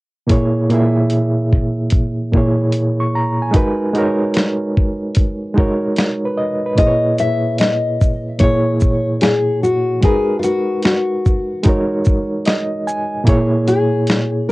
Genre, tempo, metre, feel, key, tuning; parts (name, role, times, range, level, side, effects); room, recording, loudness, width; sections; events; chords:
lo-fi hip hop; 74 BPM; 4/4; swing 66% on 16ths; A4 = 440 Hz
barky reed electric piano; accompaniment; 0.3-14.5 s; A#2 to C#6; -17 LUFS; right 1 dB; fast tremolo, cassette tape
dusty soul sampler-style drum kit; drums; 0.3-14.3 s; hi-hat, kick drum, shaker, snare drum; -15 LUFS; equal; cassette tape
nylon-string guitar; melody; 6.8-14.5 s; E#4 to E5; -18 LUFS; left 2 dB; cassette tape
light reverb; home recording on cassette; -14 LUFS; side -20 dB against mid
0.3-6.8 A section; 6.8-14.5 B section
reed electric piano fill 12.1-13.3
0.3 A#m7b5; 3.5 G#m9; 6.8 A#m7b5; 10.0 G#m9; 13.3 A#m7b5